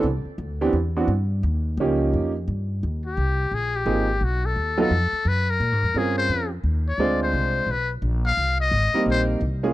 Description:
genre	jazz, small-group swing and bop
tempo	173 BPM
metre	4/4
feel	swing 62% on 8ths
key	Ab major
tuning	A4 = 438 Hz
part	bright upright piano	accompaniment	0.0-9.7 s	E3 to C5	-23 LUFS	right 3 dB	none
part	upright bass	bass	0.0-9.7 s	Ab1 to Bb2	-24 LUFS	equal	none
part	trumpet with metal mute	melody	3.1-9.2 s	F#4 to F5	-24 LUFS	left 3 dB	none
room	small room reverb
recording	dry, close 1970s-style studio recording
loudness	-20 LUFS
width	side -16 dB against mid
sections	0.0-2.8 A section; 2.8-9.7 B section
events	muted trumpet solo 2.8-9.7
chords	0.0 Cmaj9; 1.4 Eb9; 2.8 Ab69; 4.2 B7#11; 5.6 Bbm9; 7.0 Dm7b5; 7.7 Bb5; 8.4 Cm7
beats	| 0.04 0.39 0.74 1.09 | 1.44 1.78 2.13 2.48 | 2.83 3.17 3.52 3.87 | 4.21 4.56 4.91 5.26 | 5.61 5.95 6.30 6.65 | 6.99 7.34 7.69 8.03 | 8.38 8.72 9.07 9.42

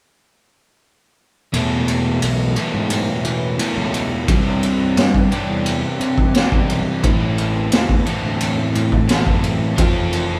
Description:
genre	psychedelic rock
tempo	87 BPM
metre	4/4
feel	straight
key	unclear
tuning	A4 = 440 Hz
part	crunchy overdriven guitar	riff	1.5-10.4 s	E2 to A4	-22 LUFS	equal	none
part	fuzz picked electric bass	bass	1.5-10.4 s	F1 to E3	-26 LUFS	equal	overdrive
part	overtone-sweeping drone	drone	3.2-10.4 s	E2 to E3	-31 LUFS	equal	none
part	raw garage drum kit	drums	1.5-10.3 s	kick drum, ride cymbal, snare drum	-22 LUFS	equal	none
room	moderate studio ambience, RT60 0.5 s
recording	band playing live in one room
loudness	-18 LUFS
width	mono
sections	1.5-10.4 A section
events	none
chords	1.5 Esus4; 4.3 Csus2; 7.0 Am; 9.8 F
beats	| 1.53 2.22 2.90 3.59 | 4.28 4.97 5.66 6.34 | 7.03 7.72 8.41 9.10 | 9.78

